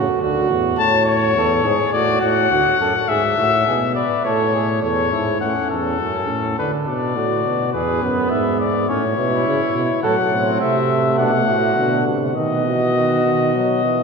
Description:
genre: classical, imitative canzona for brass ensemble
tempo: 104 BPM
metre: 4/4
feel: straight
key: unclear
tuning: A4 = 442 Hz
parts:
  - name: warm flugelhorn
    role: second line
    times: 0.0-14.0 s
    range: B3 to C#5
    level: -22 LUFS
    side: right 4 dB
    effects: none
  - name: warm trombone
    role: accompaniment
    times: 0.0-0.8, 10.0-14.0 s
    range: A2 to A3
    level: -24 LUFS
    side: right 2 dB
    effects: none
  - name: warm bass trombone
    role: bass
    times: 0.0-14.0 s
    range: D2 to D3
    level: -22 LUFS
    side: equal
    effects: none
  - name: clear trumpet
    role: melody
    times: 0.8-14.0 s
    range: A4 to A5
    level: -19 LUFS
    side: left 5 dB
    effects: none
room: wet cathedral reverb, RT60 4.8 s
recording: recorded in a church or concert hall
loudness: -16 LUFS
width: side -5 dB against mid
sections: 0.0-5.4 A section; 5.4-14.0 B section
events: none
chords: 0.0 D; 0.8 A; 1.9 D/A; 3.1 E/G#; 4.2 A; 5.4 F#m; 6.6 Bm; 7.7 E; 8.9 A; 10.0 F#dim/A; 12.4 B

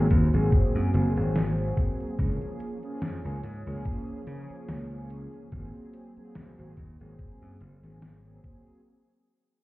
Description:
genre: vaporwave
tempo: 72 BPM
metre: 4/4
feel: swing 55% on 16ths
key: unclear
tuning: A4 = 442 Hz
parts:
  - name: mellow synth brass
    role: accompaniment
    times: 0.0-8.8 s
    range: F3 to Ab4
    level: -32 LUFS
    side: equal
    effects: wide subtle chorus, tape echo
  - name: warbly tape-like pad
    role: sustained chords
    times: 0.0-8.8 s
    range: F4 to Ab5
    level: -43 LUFS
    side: equal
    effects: chorus, built-in reverb, phaser
  - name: glassy slap bass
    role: bass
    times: 0.0-8.4 s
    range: Gb1 to Db3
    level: -28 LUFS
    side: equal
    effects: none
  - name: detuned 8-bit digital drum machine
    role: drums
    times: 0.1-8.8 s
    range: hi-hat, snare drum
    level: -34 LUFS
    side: equal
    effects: none
  - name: electronic kick drum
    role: drums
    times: 0.1-8.6 s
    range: none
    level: -25 LUFS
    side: equal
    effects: none
room: light reverb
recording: heard muffled through a wall, stone room reverb, cassette tape, EQ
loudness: -25 LUFS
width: side -19 dB against mid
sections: 0.0-8.9 A section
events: fade-out 0.0-8.9; filter sweep on ambient pad 0.0-8.9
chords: 0.0 Ab9; 2.2 Db6; 5.5 Ab9

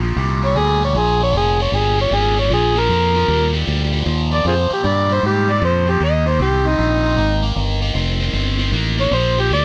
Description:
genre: electric blues shuffle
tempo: 154 BPM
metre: 4/4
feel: swing 66% on 8ths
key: Bb mixolydian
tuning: A4 = 441 Hz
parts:
  - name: cranked stack guitar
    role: riff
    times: 0.0-9.6 s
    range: Bb2 to C4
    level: -24 LUFS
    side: equal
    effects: overdrive, phaser
  - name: fingered electric bass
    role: bass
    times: 0.0-9.6 s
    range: F1 to Ab2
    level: -21 LUFS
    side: equal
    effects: none
  - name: overdriven harmonica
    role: melody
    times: 0.5-9.6 s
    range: Eb4 to Eb5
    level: -20 LUFS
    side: equal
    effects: none
room: light reverb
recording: none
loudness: -17 LUFS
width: mono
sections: 0.0-9.6 A section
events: none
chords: 0.0 Bb7; 6.0 Eb; 9.1 Bb

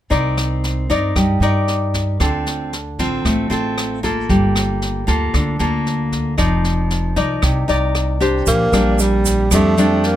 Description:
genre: bossa nova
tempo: 115 BPM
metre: 4/4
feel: straight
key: Bb major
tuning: A4 = 439 Hz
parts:
  - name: nylon-string guitar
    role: accompaniment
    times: 0.1-10.2 s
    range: Bb2 to D5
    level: -18 LUFS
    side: left 1 dB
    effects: none
  - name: upright bass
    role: bass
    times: 0.1-10.2 s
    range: F1 to G2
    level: -20 LUFS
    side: equal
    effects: none
  - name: jazz brush drum kit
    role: drums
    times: 0.1-10.1 s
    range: kick drum, rim click, snare drum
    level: -23 LUFS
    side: equal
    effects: none
  - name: breathy tenor saxophone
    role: melody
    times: 8.5-10.2 s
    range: G3 to Bb3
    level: -18 LUFS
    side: right 2 dB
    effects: none
  - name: tube shaker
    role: percussion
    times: 8.5-10.0 s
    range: none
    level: -25 LUFS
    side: right 8 dB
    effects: none
  - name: warm baby grand piano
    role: accompaniment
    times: 8.7-10.2 s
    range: Bb4 to D5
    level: -31 LUFS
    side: right 6 dB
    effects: none
room: light reverb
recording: none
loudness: -15 LUFS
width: side -12 dB against mid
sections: 0.1-8.5 A section; 8.5-10.2 B section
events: none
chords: 0.1 Cm9; 2.2 Dm7; 4.3 Gm9; 6.4 F13sus4; 8.5 Bb69

